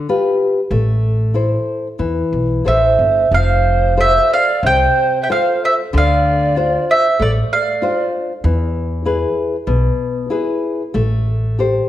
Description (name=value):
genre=fado-style ballad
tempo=94 BPM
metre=4/4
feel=uneven beats, rubato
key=A minor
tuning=A4 = 440 Hz
part: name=nylon-string guitar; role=accompaniment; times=0.0-11.9 s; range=B2 to C5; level=-19 LUFS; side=left 3 dB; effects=none
part: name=upright bass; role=bass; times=0.7-11.8 s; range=F1 to E2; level=-17 LUFS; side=equal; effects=none
part: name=mandolin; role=melody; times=2.7-8.1 s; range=D5 to G5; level=-15 LUFS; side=right 1 dB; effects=slapback echo
part: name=breathy bright polished pan flute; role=second line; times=2.7-8.1 s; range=A4 to E5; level=-20 LUFS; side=right 6 dB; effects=slapback echo
room=moderate recital hall reverb, RT60 1.5 s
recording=none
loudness=-13 LUFS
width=side -12 dB against mid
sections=0.0-11.9 A section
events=none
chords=0.0 G7; 0.7 Am; 3.3 F; 5.9 Dm7; 8.4 E; 10.9 Am7